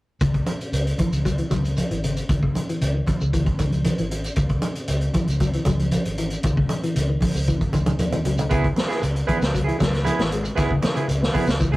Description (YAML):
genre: afrobeat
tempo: 116 BPM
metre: 4/4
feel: straight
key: C# minor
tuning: A4 = 441 Hz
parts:
  - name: semi-hollow electric guitar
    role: arpeggios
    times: 0.2-11.8 s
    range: C#3 to G#3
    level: -28 LUFS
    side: left 2 dB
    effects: none
  - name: fingered electric bass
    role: bass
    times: 0.2-11.8 s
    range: G#1 to D#2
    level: -24 LUFS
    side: equal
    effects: none
  - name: vintage drum kit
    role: drums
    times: 0.2-11.8 s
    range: hi-hat, kick drum, snare drum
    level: -24 LUFS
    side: equal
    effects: none
  - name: congas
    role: percussion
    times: 0.2-11.7 s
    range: none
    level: -27 LUFS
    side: right 1 dB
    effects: none
  - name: shekere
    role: percussion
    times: 0.2-11.7 s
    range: none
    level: -35 LUFS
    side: right 2 dB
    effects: none
  - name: electric guitar at the edge of break-up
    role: stabs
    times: 8.5-11.8 s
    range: B3 to G#4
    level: -25 LUFS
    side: right 3 dB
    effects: none
room: moderate booth ambience, RT60 0.2 s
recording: rough rehearsal-room recording, tube saturation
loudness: -20 LUFS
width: side -19 dB against mid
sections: 0.2-11.8 A section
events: drum fill 7.9-8.5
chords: 0.2 C#m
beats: | 0.21 0.73 1.25 1.77 | 2.29 2.81 3.33 3.85 | 4.37 4.89 5.40 5.92 | 6.44 6.96 7.48 7.99 | 8.51 9.03 9.55 10.06 | 10.58 11.10 11.61